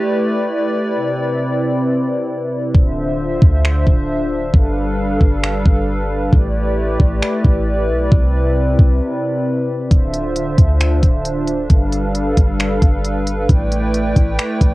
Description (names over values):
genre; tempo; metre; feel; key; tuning
hip hop, atmospheric cloud-rap; 134 BPM; 4/4; half-time; D dorian; A4 = 437 Hz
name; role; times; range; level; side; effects
hollow soft pad; sustained chords; 0.0-14.7 s; C3 to G5; -18 LUFS; equal; chorus, sidechain pumping, cassette tape
clean 808-style bass; bass; 2.7-14.7 s; D1 to D2; -18 LUFS; equal; none
smooth R&B drum kit; drums; 2.7-14.7 s; finger snaps, hi-hat, kick drum; -14 LUFS; equal; cassette tape
room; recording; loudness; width
little or no reverb; home recording on cassette; -14 LUFS; side -19 dB against mid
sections
0.0-14.7 A section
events
hi-hats muted 2.7-9.9; break 9.0-9.9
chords
0.0 A7sus4; 1.0 Cmaj7; 2.7 Dm7; 4.5 G7; 6.3 A7sus4; 8.1 Cmaj7; 9.9 Dm7; 11.7 G7; 13.5 A7sus4